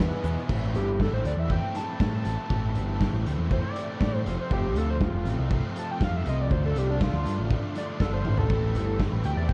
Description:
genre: indie rock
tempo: 120 BPM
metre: 4/4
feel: straight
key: A minor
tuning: A4 = 439 Hz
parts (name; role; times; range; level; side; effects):
- overdriven synth lead; melody; 0.0-9.5 s; D4 to A5; -35 LUFS; equal; none
- airy breathy pad; sustained chords; 0.4-0.5, 9.2-9.5 s; E4 to A5; -52 LUFS; equal; none
- biting overdriven guitar; riff; 0.0-9.5 s; E3 to G#4; -39 LUFS; equal; spring reverb
- cranked stack guitar; riff; 0.0-9.5 s; E2 to F4; -40 LUFS; equal; overdrive, ensemble chorus
- growling picked electric bass; bass; 0.0-9.5 s; F1 to A2; -30 LUFS; equal; overdrive
- loose indie drum kit; drums; 0.0-9.5 s; crash cymbal, hi-hat, kick drum, ride cymbal, snare drum, toms; -31 LUFS; equal; vintage 12-bit sampler grit
room: moderate plate reverb, RT60 1.0 s, small room reverb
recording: dreamy mix soaked in reverb, cassette tape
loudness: -27 LUFS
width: mono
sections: 0.5-9.5 A section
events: analog synth lead solo 0.5-9.5; drum fill 8.0-8.5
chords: 0.5 Am7; 4.3 F; 6.5 Dm; 8.5 Am7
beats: | 0.49 0.99 1.50 2.00 | 2.50 3.00 3.50 4.01 | 4.51 5.01 5.51 6.01 | 6.50 7.00 7.50 8.00 | 8.50 9.00 9.49

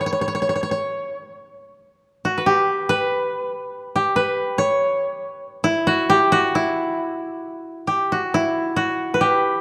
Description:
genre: japanese traditional, Japanese chamber music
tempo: 65-73 BPM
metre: 2/4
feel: rubato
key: E kumoi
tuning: A4 = 440 Hz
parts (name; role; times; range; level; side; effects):
- koto; solo; 0.0-9.6 s; E4 to C#5; -21 LUFS; equal; none
room: moderate concert hall reverb, RT60 2.0 s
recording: dark, warm production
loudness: -21 LUFS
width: mono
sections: 0.0-8.3 A section; 8.3-9.6 B section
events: none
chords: none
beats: 0.47 | 1.36 2.25 | 3.12 3.96 | 4.79 5.64 | 6.52 7.43 | 8.33 9.21

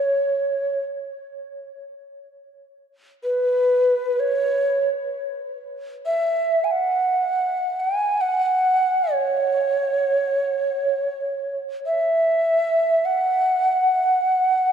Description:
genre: world meditative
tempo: free time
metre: none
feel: none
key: C# minor pentatonic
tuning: A4 = 440 Hz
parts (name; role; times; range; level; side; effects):
- breathy mellow Native American-style cedar flute; solo; 0.0-14.7 s; B4 to G#5; -19 LUFS; right 1 dB; none
room: wet cathedral reverb, RT60 4.3 s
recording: dark, warm production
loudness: -19 LUFS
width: side -8 dB against mid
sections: 0.0-5.1 A section; 5.1-14.7 A section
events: none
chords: none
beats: free time

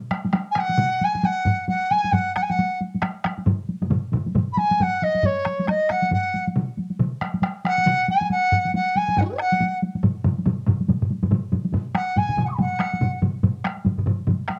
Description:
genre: japanese traditional, taiko drum ensemble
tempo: 138 BPM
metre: 4/4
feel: swing 60% on 16ths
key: unclear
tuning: A4 = 440 Hz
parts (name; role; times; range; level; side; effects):
- taiko ensemble; percussion; 0.1-14.6 s; none; -27 LUFS; equal; none
- taiko ensemble; percussion; 0.1-14.6 s; none; -28 LUFS; equal; none
- reedy large dizi; melody; 0.5-13.2 s; D#4 to D#6; -24 LUFS; equal; plate reverb
- taiko ensemble; percussion; 1.5-14.6 s; none; -27 LUFS; equal; none
room: moderate small room reverb, RT60 0.5 s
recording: home recording on cassette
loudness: -22 LUFS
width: mono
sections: 0.0-11.7 A section; 11.7-14.6 B section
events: speeding up 0.0-14.6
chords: none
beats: 0.33 0.78 | 1.23 1.68 2.13 2.58 | 3.02 3.47 3.92 4.36 | 4.80 5.24 5.68 6.12 | 6.56 7.00 7.44 7.87 | 8.31 8.74 9.17 9.60 | 10.03 10.46 10.89 11.32 | 11.74 12.17 12.59 13.02 | 13.44 13.86 14.28

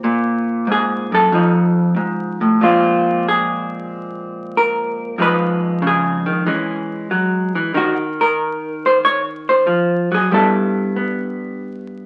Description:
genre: solo jazz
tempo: 93 BPM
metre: 4/4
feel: swing 69% on 8ths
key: Bb minor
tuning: A4 = 440 Hz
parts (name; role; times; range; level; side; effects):
- vintage hollow-body jazz guitar; solo; 0.0-12.1 s; F2 to Db5; -18 LUFS; equal; none
room: wet studio reverb, RT60 0.9 s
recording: very old 78 rpm record, vinyl crackle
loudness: -17 LUFS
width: mono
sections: 0.0-2.6 A section; 2.6-12.1 B section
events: hollow-body jazz guitar solo 0.0-2.6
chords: 0.0 Bbsus2; 1.3 F7#9; 2.6 Bbsus2; 5.2 Fm7b5; 6.5 E69; 7.7 Ebmadd9; 10.3 G69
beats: | 0.04 0.68 1.32 1.96 | 2.60 3.25 3.89 4.53 | 5.17 5.81 6.46 7.10 | 7.74 8.39 9.03 9.67 | 10.32 10.96 11.60

